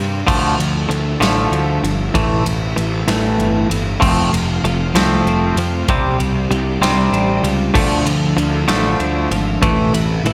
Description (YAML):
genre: indie rock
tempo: 64 BPM (dotted quarters)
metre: 6/8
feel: straight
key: unclear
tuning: A4 = 439 Hz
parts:
  - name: analog string pad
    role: sustained chords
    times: 0.0-10.3 s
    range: C3 to F5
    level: -31 LUFS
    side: equal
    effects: none
  - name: twangy electric guitar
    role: riff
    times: 0.0-10.3 s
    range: A2 to C4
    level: -20 LUFS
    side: equal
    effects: none
  - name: fuzz picked electric bass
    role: bass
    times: 0.0-10.3 s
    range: F1 to G2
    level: -22 LUFS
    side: equal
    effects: overdrive
  - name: big rock drum kit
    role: drums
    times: 0.3-10.3 s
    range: crash cymbal, kick drum, ride cymbal, snare drum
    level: -24 LUFS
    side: equal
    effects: none
  - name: twelve-string electric guitar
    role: riff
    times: 4.0-10.3 s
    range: F2 to D4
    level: -23 LUFS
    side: equal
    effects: analog chorus, digital delay
room: moderate concert hall reverb, RT60 1.7 s, studio ambience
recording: big arena sound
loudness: -16 LUFS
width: mono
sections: 0.0-10.3 A section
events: none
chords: 0.3 Dmadd9; 2.1 Amadd9; 4.0 F; 5.9 Csus2; 7.8 Dmadd9; 9.6 Amadd9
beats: | 0.28 1.21 | 2.15 3.08 | 4.02 4.96 | 5.89 6.83 | 7.76 8.70 | 9.63